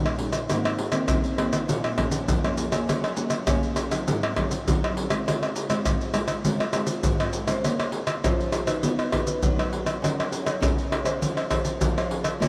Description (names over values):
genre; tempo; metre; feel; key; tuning
samba and choro; 101 BPM; 4/4; straight; Db major, Bb minor from 7.7 s; A4 = 441 Hz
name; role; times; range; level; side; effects
nylon-string guitar; accompaniment; 0.0-12.5 s; F2 to Db5; -31 LUFS; equal; lush chorus
maracas, pandeiro, tamborim and surdo; percussion; 0.1-12.5 s; none; -26 LUFS; equal; none
room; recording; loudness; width
wet huge ambient reverb, RT60 7.5 s; dreamy mix soaked in reverb; -25 LUFS; mono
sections
0.0-7.7 A section; 7.7-12.5 B section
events
none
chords
0.0 Eb7/Bb; 0.5 Abadd9; 1.7 Bbm; 2.9 Gbadd9; 4.1 Ab7; 5.3 Dbmaj7; 7.7 Bbmadd9; 8.8 B; 10.0 Gbadd9; 11.2 Dbmaj7/F